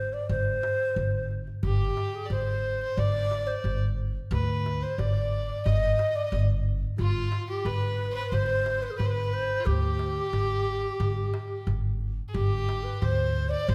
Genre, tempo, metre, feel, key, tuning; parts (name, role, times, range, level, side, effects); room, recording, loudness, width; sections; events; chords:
Arabic maqam ensemble; 90 BPM; 4/4; straight; G maqam hijaz; A4 = 440 Hz
breathy reedy low ney; melody; 0.0-13.7 s; F4 to Eb5; -32 LUFS; equal
upright bass; bass; 0.0-13.7 s; G1 to D2; -32 LUFS; equal
darbuka; percussion; 0.3-13.7 s; -33 LUFS; equal
clear fiddle; second line; 1.7-13.7 s; F4 to Eb5; -39 LUFS; equal
wet recital hall reverb, RT60 1.3 s; -28 LUFS; mono
0.0-12.3 A section; 12.3-13.7 B section